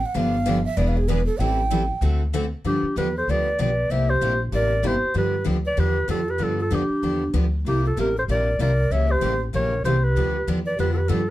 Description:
acoustic string swing (jazz manouche); 192 BPM; 4/4; swing 60% on 8ths; G mixolydian; A4 = 436 Hz
breathy bright round clay ocarina; second line; 0.0-11.3 s; D4 to G5; -28 LUFS; right 4 dB
upright bass; bass; 0.0-11.3 s; E1 to G2; -23 LUFS; equal
picked steel-string acoustic guitar; accompaniment; 0.1-11.2 s; C3 to A4; -30 LUFS; left 6 dB
picked steel-string acoustic guitar; accompaniment; 0.2-11.2 s; C3 to B4; -30 LUFS; right 4 dB
mellow clarinet; melody; 2.7-11.3 s; G4 to E5; -24 LUFS; left 1 dB
light reverb; dark, warm production; -20 LUFS; side -15 dB against mid
0.0-2.6 A section; 2.6-11.3 B section
ocarina solo 0.0-2.6
0.2 G7; 0.8 E7; 1.4 Am7; 2.0 D7; 2.6 G7; 3.9 C7; 5.1 G7; 7.7 C7; 8.9 C#dim7; 10.2 G7

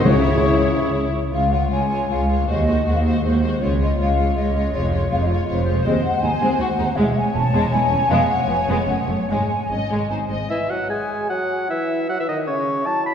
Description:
classical, dramatic, fast romantic movement for symphony orchestra; 139-164 BPM; 3/4; rubato; Db major, C# minor from 5.9 s; A4 = 440 Hz
rich symphonic violin section; melody; 0.0-10.5 s; E4 to D#5; -30 LUFS; left 5 dB
mellow clarinet; second line; 0.0-1.1, 10.5-13.1 s; C#4 to G#4; -28 LUFS; left 1 dB
mellow large flute ensemble; second line; 0.0-13.1 s; C5 to B5; -24 LUFS; left 1 dB
warm oboe; second line; 0.0-1.1, 10.5-13.1 s; C#5 to B5; -25 LUFS; equal
warm symphonic violin section; second line; 0.0-10.4 s; G#3 to C#5; -28 LUFS; left 3 dB
mellow bassoon; accompaniment; 0.0-0.9, 10.5-13.1 s; C#3 to G#3; -26 LUFS; equal
rich symphonic viola section; accompaniment; 0.0-10.4 s; Ab3 to C#5; -27 LUFS; equal
rich studio double bass section; bass; 0.0-10.4 s; E1 to Eb2; -23 LUFS; right 1 dB
rich symphonic cello section; bass; 0.0-10.4 s; C#2 to G#2; -25 LUFS; right 1 dB
timpani; percussion; 0.1-0.7 s; C#3; -22 LUFS; left 1 dB
wet concert hall reverb, RT60 2.5 s; heard from further back in the room; -18 LUFS; side -8 dB against mid
0.0-1.3 A section; 1.3-10.5 B section; 10.5-13.1 A section
0.1 C#m; 1.3 Db; 2.5 Ab7/Eb; 3.6 Db; 4.7 Db/F; 5.9 G#7; 7.0 C#m; 8.1 C#7; 8.9 F#m; 9.3 C#5/G#; 10.5 N.C.

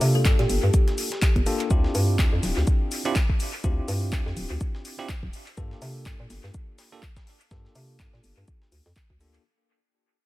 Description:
deep house; 124 BPM; 4/4; swing 57% on 16ths; A4 = 440 Hz
bell-like tine electric piano; stabs; 0.0-9.4 s; Bb3 to A4; -31 LUFS; moving between left 4 dB and right 5 dB; auto-pan, sidechain pumping, dub echo
hollow knocking FM bass; bass; 0.0-9.4 s; D1 to C3; -25 LUFS; equal; sidechain pumping
breakbeat sampler-style drum kit; drums; 0.0-9.4 s; hi-hat, shaker, snare drum; -39 LUFS; left 2 dB; high-pass filter on perc, high-pass filter on snare, high-pass filter on hats
deep house drum kit; drums; 0.0-9.3 s; handclaps, hi-hat; -33 LUFS; left 1 dB; dub echo
kalimba; melody; 0.2-0.7 s; G4 to A4; -33 LUFS; left 1 dB; dub echo
electronic kick drum; drums; 0.3-9.2 s; -23 LUFS; equal
little or no reverb; echo-heavy mix; -21 LUFS; side -17 dB against mid
0.0-9.4 A section
fade-out 0.0-9.4
0.0 Gm9; 1.7 Dm11; 5.3 Gm9

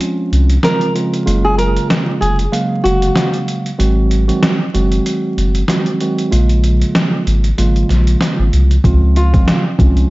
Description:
hip hop, boom-bap hip-hop; 95 BPM; 4/4; swing 55% on 16ths; Db major; A4 = 444 Hz
mellow tine electric piano; accompaniment; 0.0-10.1 s; Db3 to F5; -17 LUFS; right 2 dB; cassette tape, high-pass filter, low-pass filter
trip hop sampler-style drum kit; drums; 0.0-10.1 s; hi-hat, kick drum, snare drum; -17 LUFS; equal; overdrive
soft dub sub bass; bass; 0.3-10.0 s; F1 to Db2; -13 LUFS; equal
nylon-string guitar; melody; 0.6-3.3, 9.2-9.6 s; F4 to Bb4; -18 LUFS; equal; high-pass filter, low-pass filter, digital delay
light reverb, digital ambience; dark, warm production, vinyl crackle, nothing above 7.8 kHz; -12 LUFS; side -20 dB against mid
0.0-10.1 A section
break 0.0-8.8
0.0 Dbmaj7; 1.3 Gbmaj9; 3.8 Ab7; 6.3 Bbm7; 8.8 Dbmaj7

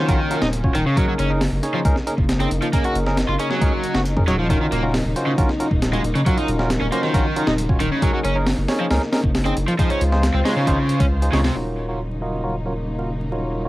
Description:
breakbeat, breaks; 136 BPM; 4/4; straight; Eb dorian; A4 = 438 Hz
warm studio string section; sustained chords; 0.0-13.7 s; Db3 to C5; -28 LUFS; left 1 dB; sidechain pumping
overdriven electric guitar; riff; 0.0-11.5 s; C3 to Gb4; -23 LUFS; equal; tube saturation, tape echo
barky tine electric piano; stabs; 0.0-13.7 s; Db4 to F5; -26 LUFS; right 1 dB; medium stereo tremolo, low-pass filter, tape echo
saturated sub bass; bass; 0.1-13.7 s; Eb1 to Db2; -23 LUFS; equal
breakbeat sampler-style drum kit; drums; 0.1-11.5 s; hi-hat, kick drum, snare drum; -22 LUFS; equal; small room ambience
little or no reverb; dry, gritty hardware recording, vinyl crackle; -18 LUFS; side -17 dB against mid
0.0-11.6 A section; 11.6-13.7 B section
0.0 Ebm7; 8.0 Gb6; 9.8 Dbmaj7; 11.6 Ebm7

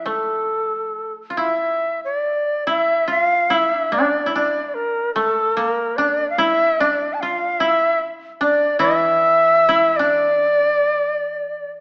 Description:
japanese traditional, Japanese chamber music; 44-52 BPM; 4/4; rubato; A4 = 441 Hz
bright reedy shakuhachi; melody; 0.0-11.7 s; A4 to A5; -17 LUFS; equal
koto; second line; 0.0-11.8 s; A3 to F4; -21 LUFS; equal
koto; accompaniment; 0.0-11.8 s; E3 to D5; -27 LUFS; equal
moderate scoring stage reverb, RT60 1.7 s; small speaker sound; -16 LUFS; side -30 dB against mid
0.0-2.7 A section; 2.7-11.8 B section

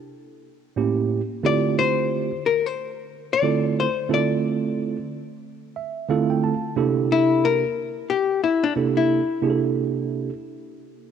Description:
hip hop; 90 BPM; 4/4; swing 60% on 16ths; A4 = 439 Hz
tine electric piano; accompaniment; 0.8-10.3 s; A2 to A5; -23 LUFS; right 6 dB; medium stereo tremolo, cassette tape
archtop guitar, miked and amplified; melody; 1.5-9.6 s; D4 to D5; -22 LUFS; left 7 dB; cassette tape
moderate lush hall reverb, RT60 2.5 s; home recording on cassette; -20 LUFS; side -8 dB against mid
0.0-6.8 A section; 6.8-11.1 B section
tine electric piano fill 5.4-6.8; hollow-body jazz guitar solo 6.8-11.1
0.0 N.C.; 0.8 A7b9; 1.4 Dm11; 6.8 C13

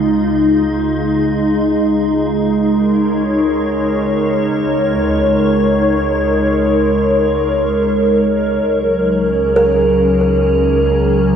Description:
ambient; free time; A4 = 440 Hz
soft additive organ-like pad; sustained chords; 0.0-11.4 s; Db3 to Db5; -13 LUFS; equal; ensemble chorus, built-in reverb
clear studio double bass section; bass; 0.0-11.4 s; Db2; -22 LUFS; equal
kalimba; arpeggios; 9.6-11.1 s; Bb4; -17 LUFS; right 1 dB; ping-pong delay
wet lush hall reverb, RT60 2.7 s; worn, warbling old tape, cassette tape, warbly pitch drift; -12 LUFS; side -8 dB against mid
0.0-11.4 A section
fade-in on double bass section 0.0-11.4
0.0 Dbadd9; 1.9 Absus24/Db; 8.7 Gbadd9/Db

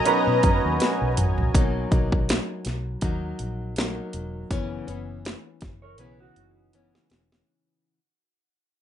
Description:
indie pop, bedroom pop; 81 BPM; 4/4; swing 55% on 16ths; B major; A4 = 438 Hz
soft electric-piano-like synth keys; melody; 0.0-1.1 s; B4; -26 LUFS; left 1 dB; ensemble chorus, ping-pong delay
clear upright piano; accompaniment; 0.0-1.6 s; C#4 to A#5; -26 LUFS; right 6 dB
nylon-string guitar; accompaniment; 0.0-8.0 s; F#2 to D#4; -32 LUFS; left 3 dB; wide subtle chorus, vibrato effect
lush unison pad; sustained chords; 0.0-1.5 s; D#5 to A#5; -30 LUFS; left 1 dB; chorus
house drum kit; drums; 0.1-7.5 s; hi-hat, kick drum, snare drum, toms; -24 LUFS; equal
vintage muted fingered electric bass; bass; 0.3-7.4 s; E1 to B2; -29 LUFS; equal
mellow electric guitar; second line; 5.8-7.3 s; D#4 to C#5; -55 LUFS; right 4 dB; lush chorus
moderate studio reverb, RT60 0.5 s; rough home demo mix, nothing above 10.8 kHz; -22 LUFS; side -10 dB against mid
0.0-1.5 A section; 1.5-7.5 B section
drum fill 0.8-1.5, 6.7-7.5; fade-out 1.5-7.5
0.0 Bmaj7; 4.5 F#7sus4

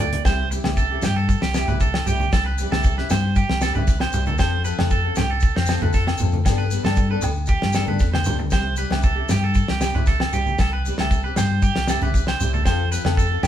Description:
highlife guitar band; 116 BPM; 4/4; straight; C major; A4 = 440 Hz
nylon-string guitar; accompaniment; 0.0-13.5 s; F3 to A4; -30 LUFS; left 2 dB
electric guitar at the edge of break-up; arpeggios; 0.0-13.5 s; C4 to D5; -26 LUFS; right 5 dB
hollow-body short-scale fingered electric bass; bass; 0.0-13.5 s; C2 to G2; -23 LUFS; left 1 dB
damped 70s drum kit; drums; 0.1-13.5 s; hi-hat, kick drum, snare drum; -22 LUFS; equal
congas; percussion; 0.1-13.5 s; -28 LUFS; right 1 dB
maracas; percussion; 0.1-13.5 s; -36 LUFS; left 2 dB
agogo bells; percussion; 0.3-13.5 s; -32 LUFS; left 1 dB
moderate studio reverb, RT60 0.9 s; band playing live in one room; -18 LUFS; side -11 dB against mid
0.3-13.5 A section
0.3 C; 4.4 F; 6.5 Gadd9; 8.5 C; 12.7 F

